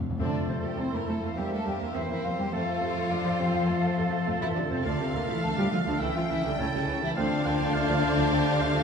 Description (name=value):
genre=quick classical-period movement for symphony orchestra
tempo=103 BPM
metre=4/4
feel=rubato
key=F major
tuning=A4 = 441 Hz
part: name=timpani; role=percussion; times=0.0-1.0 s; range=F2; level=-33 LUFS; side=left 1 dB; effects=none
part: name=rich symphonic violin section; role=melody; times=0.2-8.8 s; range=C5 to G5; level=-38 LUFS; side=left 3 dB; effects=none
part: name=clear clarinet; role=second line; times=0.2-8.8 s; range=C4 to G4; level=-39 LUFS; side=equal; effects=none
part: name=flute section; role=second line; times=0.2-8.8 s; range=Bb4 to C6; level=-36 LUFS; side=left 2 dB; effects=none
part: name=rich chamber violin section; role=second line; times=0.2-8.8 s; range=Bb3 to C5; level=-32 LUFS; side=left 3 dB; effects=none
part: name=mellow bassoon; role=accompaniment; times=0.2-8.8 s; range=G3 to D4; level=-38 LUFS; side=right 3 dB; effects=none
part: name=rich chamber viola section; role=accompaniment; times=0.2-8.8 s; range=C3 to C5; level=-35 LUFS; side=right 3 dB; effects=none
part: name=mellow French horn section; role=sustained chords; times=0.2-8.8 s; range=Bb2 to C4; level=-34 LUFS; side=left 4 dB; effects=none
part: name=dark chamber cello section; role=bass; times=0.2-8.8 s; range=Bb2 to C4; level=-32 LUFS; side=right 1 dB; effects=none
part: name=warm chamber double bass section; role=bass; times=0.2-8.8 s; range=C#2 to F2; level=-36 LUFS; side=right 3 dB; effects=none
part: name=clear oboe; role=second line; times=1.4-8.7 s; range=A4 to A5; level=-36 LUFS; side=right 4 dB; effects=none
room=wet concert hall reverb, RT60 2.0 s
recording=minimal, uncompressed stereo recording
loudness=-25 LUFS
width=side -6 dB against mid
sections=0.2-8.8 A section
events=timpani fill 0.0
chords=0.2 F; 1.4 C7/E; 2.5 F; 4.9 Dm; 6.0 A7/C#; 7.2 Dm7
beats=| 0.19 0.79 1.37 1.95 | 2.52 3.11 3.69 4.27 | 4.85 5.43 6.01 6.60 | 7.17 7.75 8.32